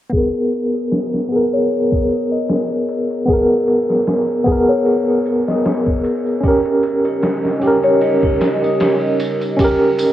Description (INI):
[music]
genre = trip hop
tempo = 76 BPM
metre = 4/4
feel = swing 55% on 16ths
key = G# harmonic minor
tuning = A4 = 440 Hz
[part]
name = tine electric piano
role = accompaniment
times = 0.1-10.1 s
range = B3 to A#4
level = -15 LUFS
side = right 1 dB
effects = tremolo, tape echo
[part]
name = music box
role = arpeggios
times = 0.1-10.1 s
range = G4 to D#5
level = -23 LUFS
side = left 6 dB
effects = low-pass filter, tape echo
[part]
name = trip hop sampler-style drum kit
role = drums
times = 0.1-10.1 s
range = hi-hat, kick drum, ride cymbal, snare drum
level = -22 LUFS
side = equal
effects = overdrive, cassette tape
[part]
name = tambourine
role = percussion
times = 0.1-10.1 s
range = none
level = -35 LUFS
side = right 2 dB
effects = none
[part]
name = dark analog pad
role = sustained chords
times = 7.1-10.1 s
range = C#4 to D#5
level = -22 LUFS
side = right 2 dB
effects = chorus
[sound]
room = light reverb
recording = home recording on cassette, low-pass filter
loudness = -14 LUFS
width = side -12 dB against mid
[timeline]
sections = 0.1-10.1 A section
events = filter sweep on music box 0.1-10.1; filter sweep 0.1-10.1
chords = 0.1 G#madd9; 6.4 D#7